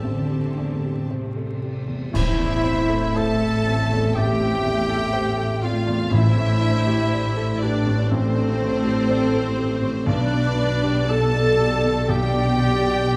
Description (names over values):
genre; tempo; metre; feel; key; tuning
cinematic, emotional film score for orchestra; 60 BPM; 4/4; rubato; A minor; A4 = 440 Hz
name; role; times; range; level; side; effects
warm studio violin section; melody; 0.0-13.2 s; C5 to A5; -32 LUFS; equal; none
rich studio violin section; second line; 0.0-13.2 s; C5 to A5; -36 LUFS; equal; none
warm clarinet; second line; 0.0-13.2 s; C4 to A4; -33 LUFS; equal; none
clear studio viola section; accompaniment; 0.0-13.2 s; C4 to A4; -33 LUFS; equal; none
felt-muted upright piano; accompaniment; 0.0-13.2 s; A1 to A5; -30 LUFS; equal; none
dark French horn section; sustained chords; 0.0-13.2 s; G3 to A4; -29 LUFS; equal; none
dark studio cello section; bass; 0.0-13.2 s; A2 to D3; -28 LUFS; equal; none
rich studio double bass section; bass; 0.0-13.2 s; A1 to B1; -28 LUFS; equal; none
mellow hollow flute section; second line; 2.1-13.2 s; A4 to E5; -32 LUFS; equal; none
clash cymbals and concert bass drum; percussion; 2.1-4.1 s; none; -32 LUFS; equal; none
timpani; percussion; 6.1-7.6 s; A2; -24 LUFS; equal; none
room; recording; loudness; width
moderate scoring stage reverb, RT60 1.5 s; vinyl crackle; -21 LUFS; mono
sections
0.0-2.1 A section; 2.1-13.2 B section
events
band accent 2.1-3.2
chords
0.0 Am7; 2.1 Am; 6.1 D7sus4/A; 10.1 Gadd9/B